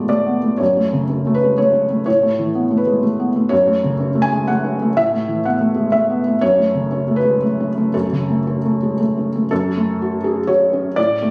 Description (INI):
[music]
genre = neoclassical minimalist piano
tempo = 123 BPM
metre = 3/4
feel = rubato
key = F# minor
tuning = A4 = 440 Hz
[part]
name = felt-muted upright piano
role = solo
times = 0.0-11.3 s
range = F#2 to G#5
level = -17 LUFS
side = equal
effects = none
[sound]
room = light reverb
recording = recorded on a phone in the room, studio reverb, nothing above 10.5 kHz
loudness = -17 LUFS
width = mono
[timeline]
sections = 0.0-9.5 A section; 9.5-11.3 A section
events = none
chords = 0.0 Asus2; 0.6 F#m; 2.1 Asus2; 3.5 F#m; 5.0 Asus2; 6.4 F#m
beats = 0.11 | 0.60 1.10 1.59 | 2.07 2.56 3.04 | 3.52 4.00 4.48 | 4.96 5.44 5.93 | 6.41 6.91 7.42 | 7.93 8.46 8.99 | 9.51 10.00 10.48 | 10.98